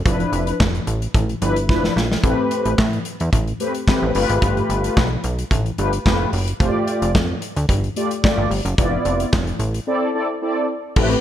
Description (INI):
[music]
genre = early-eighties boogie funk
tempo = 110 BPM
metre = 4/4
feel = straight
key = D dorian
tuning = A4 = 440 Hz
[part]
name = plucky analog bass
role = bass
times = 0.0-11.2 s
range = F1 to A2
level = -21 LUFS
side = equal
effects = none
[part]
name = mellow synth brass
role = accompaniment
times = 0.1-11.2 s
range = F3 to D5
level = -21 LUFS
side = left 1 dB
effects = chorus
[part]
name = modern studio drum kit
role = drums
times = 0.1-11.2 s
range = crash cymbal, handclaps, hi-hat, kick drum, snare drum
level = -20 LUFS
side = equal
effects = gated reverb
[sound]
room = light reverb, small room reverb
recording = none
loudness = -17 LUFS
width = side -11 dB against mid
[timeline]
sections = 0.0-11.0 A section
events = drum fill 1.7-2.2; break 9.9-11.0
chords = 0.1 Dm69/F; 2.2 Am9; 4.1 G9; 6.6 F69; 8.8 Dm69/F; 9.9 C69